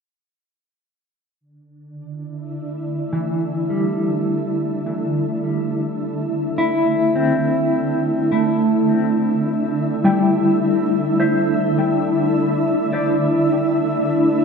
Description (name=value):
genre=ambient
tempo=52 BPM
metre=3/4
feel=straight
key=unclear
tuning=A4 = 441 Hz
part: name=shimmering ambient pad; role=sustained chords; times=1.9-14.4 s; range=D3 to E4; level=-19 LUFS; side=equal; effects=chorus, built-in reverb, shimmer reverb
part: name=mellow electric guitar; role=arpeggios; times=3.1-14.4 s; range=E3 to G5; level=-21 LUFS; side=left 1 dB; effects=tremolo, ping-pong delay
room=wet lush hall reverb, RT60 2.6 s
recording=none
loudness=-17 LUFS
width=side -5 dB against mid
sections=1.4-14.4 A section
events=filter sweep on ambient pad 1.4-14.4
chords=1.4 D5